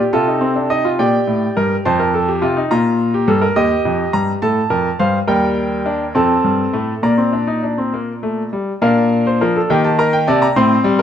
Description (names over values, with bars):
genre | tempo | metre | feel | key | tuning
classical, baroque-style 4-part fugue for grand piano | 69 BPM (dotted quarters) | 6/8 | straight | Bb major from 5.3 s | A4 = 440 Hz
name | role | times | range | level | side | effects
bright grand piano | solo | 0.0-11.0 s | Eb2 to C6 | -14 LUFS | equal | none
room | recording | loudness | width
light reverb | close, detailed microphones | -14 LUFS | side -9 dB against mid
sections
0.0-8.8 A section; 8.8-11.0 B section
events
none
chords
0.1 Adim/C; 1.0 Gm; 1.8 F; 2.7 Bb5; 3.6 Eb; 4.4 Fadd9; 5.3 Ebmaj7; 6.2 F; 7.0 Bb; 9.7 Cm7/Eb